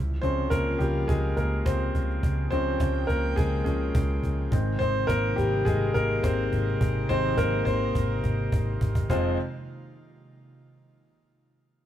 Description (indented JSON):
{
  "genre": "piano-driven pop",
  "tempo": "105 BPM",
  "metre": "4/4",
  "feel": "straight",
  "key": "F minor",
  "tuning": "A4 = 442 Hz",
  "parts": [
    { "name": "airy breathy pad", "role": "sustained chords", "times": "0.0-9.4 s", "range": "C3 to G5", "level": "-35 LUFS", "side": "right 1 dB", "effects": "chorus" },
    { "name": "vintage muted picked electric bass", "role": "bass", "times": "0.0-9.4 s", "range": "F1 to Db2", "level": "-28 LUFS", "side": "equal", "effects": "none" },
    { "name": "clear grand piano", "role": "accompaniment", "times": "0.2-9.4 s", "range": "F2 to C5", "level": "-27 LUFS", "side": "left 1 dB", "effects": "none" },
    { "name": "cajon", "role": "drums", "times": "0.2-9.2 s", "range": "none", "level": "-30 LUFS", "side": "equal", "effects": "none" }
  ],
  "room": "moderate large studio reverb, RT60 1.2 s",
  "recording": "band playing live in one room",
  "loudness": "-23 LUFS",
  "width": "side -11 dB against mid",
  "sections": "0.0-9.1 A section; 9.1-11.4 B section",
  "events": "grand piano solo 0.0-9.1; drum fill 8.5-9.1",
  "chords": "0.0 Db; 4.5 Ab; 9.1 Fm"
}